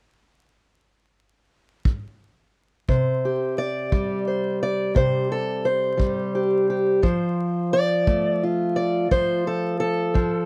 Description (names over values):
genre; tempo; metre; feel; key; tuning
acoustic country blues, solo or duo; 58 BPM (dotted quarters); 12/8; straight; unclear; A4 = 438 Hz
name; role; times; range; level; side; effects
kick drum; drums; 1.9-10.3 s; none; -25 LUFS; equal; none
fingerpicked steel-string acoustic guitar; melody; 2.9-10.5 s; C3 to D5; -23 LUFS; equal; none
room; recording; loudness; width
little or no reverb; close, detailed microphones, vinyl crackle; -23 LUFS; mono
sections
0.0-2.9 A section; 2.9-10.5 B section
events
steel-string acoustic guitar solo 2.9-10.5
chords
0.0 N.C.; 2.9 C5; 7.0 F